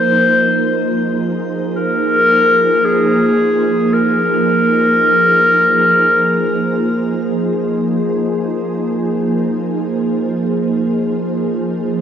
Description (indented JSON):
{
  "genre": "ambient",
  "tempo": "free time",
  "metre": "none",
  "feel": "none",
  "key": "Ab major",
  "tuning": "A4 = 439 Hz",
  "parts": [
    { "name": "mellow clarinet", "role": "melody", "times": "0.0-7.2 s", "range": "Ab4 to C5", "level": "-13 LUFS", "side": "left 1 dB", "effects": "shimmer reverb, analog delay" },
    { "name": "soft additive organ-like pad", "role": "sustained chords", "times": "0.0-12.0 s", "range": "F3 to C5", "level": "-16 LUFS", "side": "right 1 dB", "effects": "ensemble chorus, built-in reverb, shimmer reverb" }
  ],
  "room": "wet plate reverb, RT60 2.5 s",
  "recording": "echo-heavy mix, nothing above 10.7 kHz",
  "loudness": "-12 LUFS",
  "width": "side -8 dB against mid",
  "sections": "0.0-12.0 A section",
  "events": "filter sweep on ambient pad 0.0-12.0",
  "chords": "0.0 Abadd9"
}